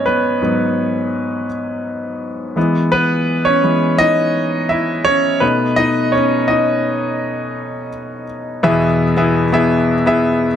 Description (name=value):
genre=pop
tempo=84 BPM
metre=4/4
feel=straight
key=E major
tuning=A4 = 440 Hz
part: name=clear grand piano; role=solo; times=0.0-10.6 s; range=E2 to E5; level=-14 LUFS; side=equal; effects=none
room=moderate studio reverb, RT60 0.6 s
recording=none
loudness=-14 LUFS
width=side -9 dB against mid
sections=0.0-8.6 A section; 8.6-10.6 B section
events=grand piano solo 0.0-8.6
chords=0.0 G#m7; 2.6 E; 5.4 B7; 8.6 E